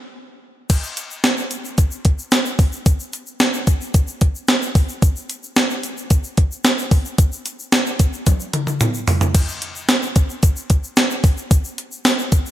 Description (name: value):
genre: pop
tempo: 111 BPM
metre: 4/4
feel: straight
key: none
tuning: none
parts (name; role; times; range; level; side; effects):
- clean 12-bit digital drum machine; drums; 0.7-12.4 s; crash cymbal, hi-hat, kick drum, snare drum, tambourine, toms; -16 LUFS; equal; overdrive, gated reverb
- egg shaker; percussion; 0.7-12.5 s; none; -32 LUFS; left 3 dB; none
room: light reverb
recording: none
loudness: -16 LUFS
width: side -13 dB against mid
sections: 0.7-9.3 A section; 9.3-12.5 B section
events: stop 0.0-0.7; drum fill 8.3-9.3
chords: none